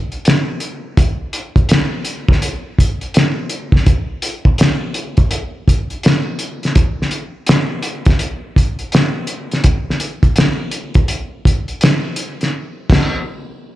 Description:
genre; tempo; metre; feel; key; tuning
R&B; 83 BPM; 4/4; swing 63% on 16ths; none; none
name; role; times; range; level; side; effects
cloth-damped thuddy drum kit; drums; 0.1-13.2 s; crash cymbal, hi-hat, kick drum, snare drum; -14 LUFS; equal; none
room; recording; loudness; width
moderate plate reverb, RT60 2.9 s; live gig heard through the venue's PA, club reverb; -14 LUFS; side -15 dB against mid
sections
0.0-13.8 A section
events
band accent 12.5-13.8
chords
none

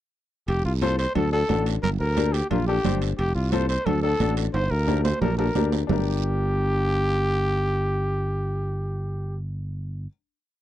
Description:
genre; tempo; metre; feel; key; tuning
latin, cumbia; 177 BPM; 4/4; straight; G minor; A4 = 440 Hz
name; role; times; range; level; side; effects
growling trumpet; melody; 0.5-9.4 s; F4 to C5; -27 LUFS; equal; none
modern bright fingered electric bass; bass; 0.5-10.1 s; F1 to D2; -25 LUFS; equal; none
congas; percussion; 0.5-6.0 s; none; -30 LUFS; right 6 dB; none
guiro; percussion; 0.5-6.0 s; none; -41 LUFS; right 24 dB; none
timbales; percussion; 0.5-6.0 s; none; -32 LUFS; right 5 dB; none
bright upright piano; accompaniment; 0.8-10.1 s; C4 to C5; -29 LUFS; left 13 dB; none
room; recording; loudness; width
little or no reverb; dry, close 1970s-style studio recording; -22 LUFS; side -13 dB against mid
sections
0.5-5.9 A section; 5.9-8.6 final chord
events
drum fill 4.5-5.9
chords
0.5 F; 1.2 D; 1.8 Gm; 3.2 F; 3.9 D; 4.5 Gm

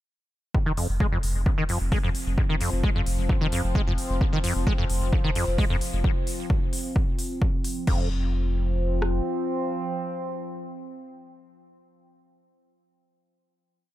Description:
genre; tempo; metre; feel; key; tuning
driving peak-time techno; 131 BPM; 4/4; straight; unclear; A4 = 440 Hz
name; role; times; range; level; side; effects
acid bass, saw; riff; 0.5-8.1 s; F2 to Ab3; -29 LUFS; equal; analog chorus, sidechain pumping, ping-pong delay
analog drone; drone; 1.4-11.7 s; F3 to C4; -32 LUFS; equal; chorus, sidechain pumping
techno drum kit; drums; 0.5-9.1 s; kick drum, rim click; -25 LUFS; equal; none
saturated sub bass; bass; 0.7-9.2 s; F1; -27 LUFS; equal; tube saturation, sidechain pumping, low-pass filter
techno drum kit; drums; 0.8-8.0 s; crash cymbal, hi-hat; -36 LUFS; left 2 dB; sidechain pumping on hats, sidechain pumping on cymbals
room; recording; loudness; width
digital ambience; none; -23 LUFS; side -14 dB against mid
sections
0.5-7.9 groove; 7.9-11.5 final chord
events
none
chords
0.5 F5

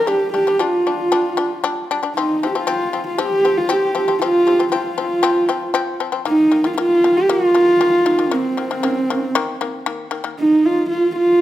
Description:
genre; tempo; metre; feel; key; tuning
mongolian traditional, Mongolian folk; 117 BPM; 4/4; straight; unclear; A4 = 440 Hz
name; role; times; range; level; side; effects
dark horsehead fiddle; melody; 0.0-11.4 s; C4 to G4; -17 LUFS; equal; none
mellow low xiao; second line; 0.0-11.4 s; C4 to Bb4; -22 LUFS; right 3 dB; none
shamisen; arpeggios; 0.0-10.3 s; Eb3 to D4; -22 LUFS; left 6 dB; none
room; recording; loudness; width
light reverb; close, detailed microphones; -15 LUFS; side -13 dB against mid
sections
0.0-10.4 A section; 10.4-11.4 B section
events
none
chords
0.0 G5; 2.1 F5; 6.3 Eb5; 10.4 N.C.

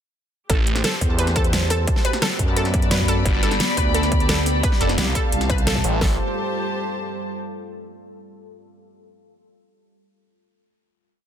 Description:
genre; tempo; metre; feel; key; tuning
dark technical drum and bass; 174 BPM; 4/4; straight; A minor; A4 = 440 Hz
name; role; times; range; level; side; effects
deep dark ambient pad; sustained chords; 1.2-6.2 s; G3 to D5; -28 LUFS; right 1 dB; chorus, built-in reverb, vintage 12-bit sampler grit, sidechain pumping
analog pluck; arpeggios; 0.5-6.2 s; A4 to B4; -27 LUFS; equal; chorus, sidechain pumping, digital delay
phased detuned saw bass; bass; 0.5-0.8, 3.3-6.2 s; F1 to A1; -22 LUFS; equal; phaser, sidechain pumping
dubstep drum kit; drums; 0.5-6.1 s; kick drum, snare drum; -22 LUFS; equal; distortion
dubstep drum kit; drums; 0.5-5.9 s; hi-hat, snare drum; -24 LUFS; equal; none
dark studio string section; texture; 0.5-7.4 s; F#4 to B5; -28 LUFS; left 1 dB; sidechain pumping
growling FM bass; bass; 1.0-5.8 s; C2 to F#2; -22 LUFS; equal; tube saturation
room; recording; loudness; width
light reverb, digital ambience; dense, heavily limited modern master; -18 LUFS; side -9 dB against mid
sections
0.5-6.0 drop; 6.0-7.4 final chord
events
drop 0.5-6.0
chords
0.5 Am7; 1.9 Bm; 3.3 G; 4.6 Fadd9; 6.0 Am7

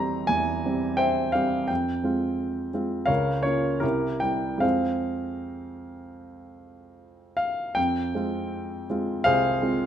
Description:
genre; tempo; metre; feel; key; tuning
classical, romantic character piece for solo piano; 73-87 BPM; 4/4; rubato; F minor; A4 = 441 Hz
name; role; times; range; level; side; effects
dark grand piano; solo; 0.0-9.9 s; C2 to C6; -24 LUFS; equal; none
room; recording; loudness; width
moderate recital hall reverb, RT60 1.3 s; close, detailed microphones; -23 LUFS; side -9 dB against mid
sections
0.0-7.8 A section; 7.8-9.9 B section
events
none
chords
0.0 C/E; 1.7 Fm; 3.1 Bbm/Db; 3.8 C7; 4.6 Fm

